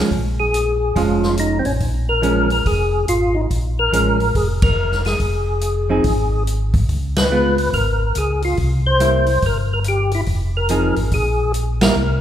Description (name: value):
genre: soul jazz organ trio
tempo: 142 BPM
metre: 4/4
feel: swing 64% on 8ths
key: unclear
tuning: A4 = 442 Hz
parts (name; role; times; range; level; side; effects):
- hollow-body jazz guitar; accompaniment; 0.0-12.0 s; F3 to Ab4; -22 LUFS; right 3 dB; none
- mellow tonewheel organ; bass; 0.0-12.2 s; F1 to Db2; -20 LUFS; equal; chorus vibrato, slow rotary speaker
- vintage drum kit; drums; 0.1-11.9 s; hi-hat, kick drum, ride cymbal, snare drum; -22 LUFS; equal; none
- percussive tonewheel organ; melody; 0.4-12.2 s; C4 to C5; -19 LUFS; left 2 dB; slow rotary speaker, chorus vibrato
room: wet recital hall reverb, RT60 1.5 s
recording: recorded in a church or concert hall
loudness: -15 LUFS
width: side -10 dB against mid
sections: 0.0-12.2 A section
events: band accent 4.6, 7.1, 11.8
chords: 0.1 Bbm7; 5.2 Fm; 6.9 Db7; 8.6 C7; 10.3 Fm7; 11.1 Edim/Bb